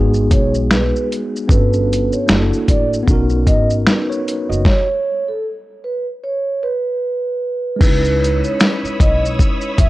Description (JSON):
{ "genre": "lo-fi hip hop", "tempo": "76 BPM", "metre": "4/4", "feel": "swing 58% on 16ths", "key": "unclear", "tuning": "A4 = 438 Hz", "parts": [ { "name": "tine electric piano", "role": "accompaniment", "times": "0.0-9.9 s", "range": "G#3 to D#5", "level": "-20 LUFS", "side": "equal", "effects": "medium stereo tremolo, cassette tape, low-pass filter" }, { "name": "upright bass", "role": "bass", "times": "0.0-9.9 s", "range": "F#1 to D#2", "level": "-19 LUFS", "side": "equal", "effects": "none" }, { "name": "dusty soul sampler-style drum kit", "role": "drums", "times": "0.1-9.9 s", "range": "crash cymbal, finger snaps, hi-hat, kick drum, shaker, snare drum", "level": "-15 LUFS", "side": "equal", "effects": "overdrive" }, { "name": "vibraphone with soft mallets", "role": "melody", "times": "0.3-9.9 s", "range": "A4 to E5", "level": "-20 LUFS", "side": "right 2 dB", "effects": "low-pass filter" }, { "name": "string machine, full ensemble", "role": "sustained chords", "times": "7.8-9.9 s", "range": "C#5 to E6", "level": "-25 LUFS", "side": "equal", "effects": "ensemble chorus, low-pass filter" }, { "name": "tambourine", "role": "percussion", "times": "8.6-8.8 s", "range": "none", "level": "-37 LUFS", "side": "left 1 dB", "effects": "none" } ], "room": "little or no reverb", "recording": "dry, gritty hardware recording, cassette tape", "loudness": "-14 LUFS", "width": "side -18 dB against mid", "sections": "0.0-7.8 A section; 7.8-9.9 B section", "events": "stop 4.7-7.8", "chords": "0.0 G#m7; 1.5 Gmaj9#11; 2.3 F#7alt; 3.1 Bmaj7; 4.7 N.C.; 7.8 C#m9" }